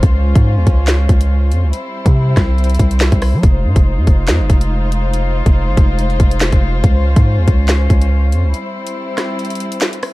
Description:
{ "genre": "hip hop, drill", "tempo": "141 BPM", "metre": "4/4", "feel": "half-time", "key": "F minor", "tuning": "A4 = 440 Hz", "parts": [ { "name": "warm chamber string section", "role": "sustained chords", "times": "0.0-10.1 s", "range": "G3 to C5", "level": "-22 LUFS", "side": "left 2 dB", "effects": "none" }, { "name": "long sustained 808-style bass", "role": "bass", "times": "0.0-8.5 s", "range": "F1 to G3", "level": "-13 LUFS", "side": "equal", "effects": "none" }, { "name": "drill drum kit", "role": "drums", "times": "0.0-10.1 s", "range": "handclaps, hi-hat, kick drum, rim click, snare drum", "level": "-13 LUFS", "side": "equal", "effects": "none" } ], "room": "digital ambience", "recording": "dark, warm production", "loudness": "-11 LUFS", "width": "side -20 dB against mid", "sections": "0.0-10.1 A section", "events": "break 8.5-10.1", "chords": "0.0 Dbmaj7; 1.7 C; 3.4 Fm7; 6.8 Dbmaj7; 8.5 C" }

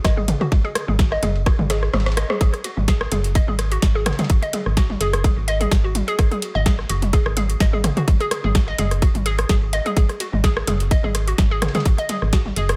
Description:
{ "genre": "minimal techno", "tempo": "127 BPM", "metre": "4/4", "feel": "swing 54% on 16ths", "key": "unclear", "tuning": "A4 = 440 Hz", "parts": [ { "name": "hollow square pluck", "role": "riff", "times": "0.0-12.6 s", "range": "F#4 to D#5", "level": "-29 LUFS", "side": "equal", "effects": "chorus, sidechain pumping, analog delay" }, { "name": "woody FM bass", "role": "bass", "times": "0.0-12.8 s", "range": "F#1 to G#1", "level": "-25 LUFS", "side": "equal", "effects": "sidechain pumping" }, { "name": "booming analog drum machine", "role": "drums", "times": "0.0-12.8 s", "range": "hi-hat, rim click, snare drum", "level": "-29 LUFS", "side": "equal", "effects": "none" }, { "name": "dusty soul sampler-style drum kit", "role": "drums", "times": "0.0-12.8 s", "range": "ride cymbal, snare drum", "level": "-41 LUFS", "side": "equal", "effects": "none" }, { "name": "electronic kick drum", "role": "drums", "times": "0.0-12.4 s", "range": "none", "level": "-19 LUFS", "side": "equal", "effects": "overdrive" }, { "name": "minimal click drum kit", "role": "percussion", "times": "0.0-12.8 s", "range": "rim click, toms", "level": "-28 LUFS", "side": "equal", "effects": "tape echo" } ], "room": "light reverb", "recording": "none", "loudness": "-20 LUFS", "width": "mono", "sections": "0.0-2.4 A section; 2.4-12.8 B section", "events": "drum fill 1.7-2.4; kick drops out 1.9-2.4; band accent 2.3; drop 2.4-12.8", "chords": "0.0 G#5" }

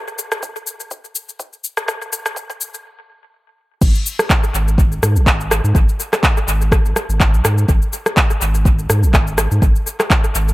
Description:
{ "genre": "afro house", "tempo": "124 BPM", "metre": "4/4", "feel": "swing 55% on 16ths", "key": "G# minor", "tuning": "A4 = 440 Hz", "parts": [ { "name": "afro-pop drum kit", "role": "drums", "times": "0.1-10.5 s", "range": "cabasa, crash cymbal, handclaps, rim click", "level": "-19 LUFS", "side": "equal", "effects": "high-pass filter on snare, high-pass filter on perc, high-pass filter on cymbals, high-pass filter on room, tape echo" }, { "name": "electronic kick drum", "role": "drums", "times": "0.4-10.2 s", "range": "none", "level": "-15 LUFS", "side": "equal", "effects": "high-pass filter on kick, high-pass filter on room" }, { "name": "warm sub bass", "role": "bass", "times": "3.8-10.5 s", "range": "G#1 to G#2", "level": "-16 LUFS", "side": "equal", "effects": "tube saturation, sidechain pumping" } ], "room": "light reverb", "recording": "echo-heavy mix, high-pass filter", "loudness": "-14 LUFS", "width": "side -19 dB against mid", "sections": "0.0-3.8 A section; 3.8-10.5 B section", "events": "build-up 0.0-3.8; filter sweep 0.0-3.8; stop 2.8-3.8; drop 3.8-10.5", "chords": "none" }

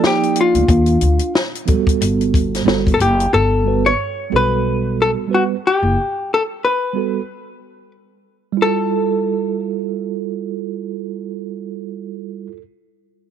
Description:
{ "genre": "hip hop, jazz-hop", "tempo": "91 BPM", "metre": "4/4", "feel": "swing 57% on 16ths", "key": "F major", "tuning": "A4 = 443 Hz", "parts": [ { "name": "vintage hollow-body jazz guitar", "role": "melody", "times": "0.0-12.6 s", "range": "F4 to Db5", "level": "-17 LUFS", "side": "left 3 dB", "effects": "none" }, { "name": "vibraphone with medium mallets", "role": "second line", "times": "0.0-1.3 s", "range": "D4 to Eb4", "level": "-26 LUFS", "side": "right 12 dB", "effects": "none" }, { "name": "mellow tine electric piano", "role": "accompaniment", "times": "0.0-12.6 s", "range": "F3 to D5", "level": "-21 LUFS", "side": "right 11 dB", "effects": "slow stereo tremolo" }, { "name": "compact cocktail drum kit", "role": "drums", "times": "0.0-3.3 s", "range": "hi-hat, kick drum, snare drum", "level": "-18 LUFS", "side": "left 2 dB", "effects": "none" }, { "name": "upright bass", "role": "bass", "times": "0.5-5.9 s", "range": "F#1 to Eb2", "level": "-18 LUFS", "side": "left 1 dB", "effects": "none" } ], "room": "small room ambience", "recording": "1960s-style stereo", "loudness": "-15 LUFS", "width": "side -9 dB against mid", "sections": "0.0-8.6 A section; 8.6-11.2 B section", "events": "none", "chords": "0.0 Ebmaj9; 2.0 Gmaj9; 8.6 Fmaj9" }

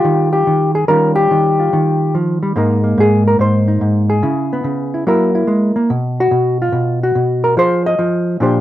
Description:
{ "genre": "solo jazz", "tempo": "144 BPM", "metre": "4/4", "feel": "swing 67% on 8ths", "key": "Eb major", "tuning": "A4 = 444 Hz", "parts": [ { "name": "hollow-body jazz guitar", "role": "solo", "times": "0.0-8.6 s", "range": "Ab2 to Eb5", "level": "-12 LUFS", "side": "equal", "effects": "none" } ], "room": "moderate studio ambience, RT60 0.5 s", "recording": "none", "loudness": "-12 LUFS", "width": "side -13 dB against mid", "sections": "0.0-8.6 A section", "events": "none", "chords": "0.0 Ebmaj9; 0.9 Eb9; 2.6 Abadd9; 4.2 Dbm7; 5.1 Gb7; 5.9 B5; 7.6 Fm7" }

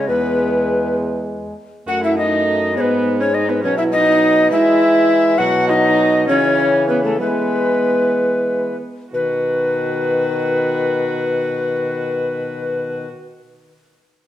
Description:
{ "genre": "classical, renaissance-style consort dance", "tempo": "60-69 BPM (dotted quarters)", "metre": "6/8", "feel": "straight", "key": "B mixolydian", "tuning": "A4 = 439 Hz", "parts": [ { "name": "tenor recorder", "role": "melody", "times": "0.0-13.1 s", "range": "A4 to F#5", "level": "-18 LUFS", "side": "left 3 dB", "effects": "none" }, { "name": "warm viola", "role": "second line", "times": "0.0-13.1 s", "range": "A3 to F#4", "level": "-21 LUFS", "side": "right 3 dB", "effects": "none" }, { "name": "clear trombone", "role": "accompaniment", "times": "0.0-13.1 s", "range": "D#3 to A3", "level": "-24 LUFS", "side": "left 2 dB", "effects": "none" }, { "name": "mellow bassoon", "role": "bass", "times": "0.0-13.1 s", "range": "E2 to E3", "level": "-22 LUFS", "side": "right 2 dB", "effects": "none" } ], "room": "wet recital hall reverb, RT60 1.7 s", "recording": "dark, warm production", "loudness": "-14 LUFS", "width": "side -12 dB against mid", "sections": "0.0-9.1 A section; 9.1-13.1 B section", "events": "slowing down 4.5-9.1", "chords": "0.1 E; 1.9 F#m; 2.8 G#m; 3.6 B; 4.5 E; 5.4 B; 6.3 C#m; 7.2 E; 9.1 B" }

